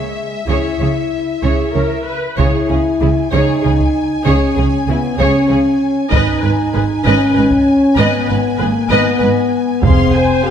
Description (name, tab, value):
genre	cinematic, epic orchestral film score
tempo	64 BPM (dotted quarters)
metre	6/8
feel	straight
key	unclear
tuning	A4 = 438 Hz
part	warm symphonic violin section	melody	0.0-10.5 s	Fb5 to C6	-26 LUFS	left 3 dB	none
part	dark French horn section	sustained chords	0.0-10.5 s	Ab3 to G4	-16 LUFS	left 2 dB	none
part	warm studio violin section	second line	0.5-10.5 s	E4 to Ab5	-21 LUFS	left 2 dB	none
part	warm symphonic viola section	accompaniment	0.5-10.5 s	Ab4 to C5	-22 LUFS	equal	none
part	warm symphonic cello section	bass	0.5-10.5 s	F2 to Db3	-20 LUFS	right 3 dB	none
part	warm symphonic double bass section	bass	0.5-10.5 s	F1 to Db2	-19 LUFS	right 4 dB	none
part	taiko ensemble	drums	2.4-10.4 s	none	-18 LUFS	equal	none
room	moderate scoring stage reverb, RT60 1.6 s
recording	none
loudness	-12 LUFS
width	side -8 dB against mid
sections	0.0-2.4 A section; 2.4-10.5 B section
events	none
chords	0.0 Dbm; 2.4 C#m; 6.1 G#m; 9.8 Fm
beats	| 0.47 1.43 | 2.38 3.31 | 4.25 5.19 | 6.12 7.05 | 7.97 8.90 | 9.83